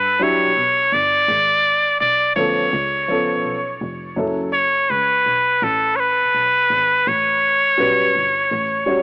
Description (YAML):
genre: hip hop, jazz-hop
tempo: 83 BPM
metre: 4/4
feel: swing 66% on 16ths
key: unclear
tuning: A4 = 440 Hz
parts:
  - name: trumpet with straight mute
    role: melody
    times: 0.0-9.0 s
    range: A4 to D5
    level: -15 LUFS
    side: equal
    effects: analog delay
  - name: dark double bass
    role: bass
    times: 0.0-9.0 s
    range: E#1 to B2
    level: -31 LUFS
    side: equal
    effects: none
  - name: dark baby grand piano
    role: accompaniment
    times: 0.2-9.0 s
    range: F3 to C#5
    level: -20 LUFS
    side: equal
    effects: none
room: light reverb, studio reverb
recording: vinyl crackle, AM radio sound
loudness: -15 LUFS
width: side -30 dB against mid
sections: 0.0-9.0 A section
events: none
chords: 0.0 Em9; 1.3 G#dim; 2.7 C#7b13; 4.2 F#m; 7.1 A13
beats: 0.56 | 1.28 2.00 2.73 3.45 | 4.17 4.89 5.62 6.34 | 7.06 7.79 8.51